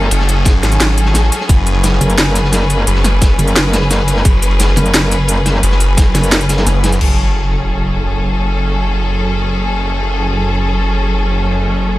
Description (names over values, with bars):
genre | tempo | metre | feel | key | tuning
dark technical drum and bass | 174 BPM | 4/4 | straight | F# minor | A4 = 439 Hz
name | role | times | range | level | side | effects
rich symphonic string section | sustained chords | 0.0-12.0 s | F#3 to B4 | -18 LUFS | equal | sidechain pumping
metallic wobble bass | bass | 0.0-6.7 s | F#1 | -13 LUFS | equal | chorus
phased detuned saw bass | bass | 0.1-12.0 s | F#1 to A1 | -14 LUFS | equal | phaser, tube saturation, sidechain pumping
crunchy breakbeat drum kit | drums | 0.1-7.0 s | ride cymbal, snare drum | -23 LUFS | equal | high-pass filter on cymbals, small room ambience, high-pass filter on snare, high-pass filter on room
drum and bass drum kit | drums | 0.1-7.1 s | crash cymbal, hi-hat, snare drum | -16 LUFS | equal | small room ambience
electronic kick drum | drums | 0.5-6.0 s | none | -10 LUFS | equal | small room ambience
sub drop | sound effects | 7.0-8.4 s | none | -18 LUFS | equal | none
room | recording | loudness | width
small room ambience | none | -11 LUFS | side -17 dB against mid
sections
0.0-7.0 A section; 7.0-12.0 B section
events
kick drops out 6.3-7.0; impact 7.0-8.4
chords
0.0 F#madd9